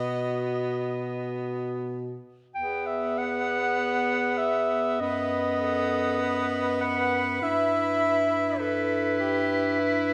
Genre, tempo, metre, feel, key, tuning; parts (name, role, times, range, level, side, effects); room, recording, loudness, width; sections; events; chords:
classical, lyrical piece for single-reed quartet; 45-51 BPM; 4/4; rubato; E minor; A4 = 440 Hz
clear soprano saxophone; melody; 0.0-10.1 s; E4 to D#5; -36 LUFS; equal
clear clarinet; second line; 0.0-10.1 s; F#4 to G5; -30 LUFS; equal
clear tenor saxophone; accompaniment; 0.0-10.1 s; B3 to E4; -32 LUFS; equal
mellow bass clarinet; bass; 0.0-10.1 s; E2 to B2; -34 LUFS; equal
moderate scoring stage reverb, RT60 1.5 s; -27 LUFS; mono
0.0-2.5 A section; 2.5-10.1 B section
0.0 B; 2.5 E5; 5.0 B/F#; 7.4 Em/G